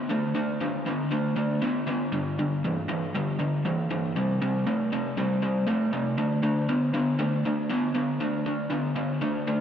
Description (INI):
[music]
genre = rock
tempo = 118 BPM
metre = 4/4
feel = straight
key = unclear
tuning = A4 = 441 Hz
[part]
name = raw garage guitar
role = solo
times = 0.0-9.6 s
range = G2 to B3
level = -24 LUFS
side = equal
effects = overdrive, spring reverb, slapback echo, tape echo
[sound]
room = wet lush hall reverb, RT60 2.7 s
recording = big arena sound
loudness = -24 LUFS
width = side -9 dB against mid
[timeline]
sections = 0.0-9.6 A section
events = none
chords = 0.0 D5; 2.1 G5; 4.2 C5; 6.2 D5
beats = | 0.11 0.62 1.12 1.63 | 2.14 2.64 3.15 3.66 | 4.16 4.67 5.17 5.68 | 6.19 6.69 7.20 7.70 | 8.21 8.71 9.22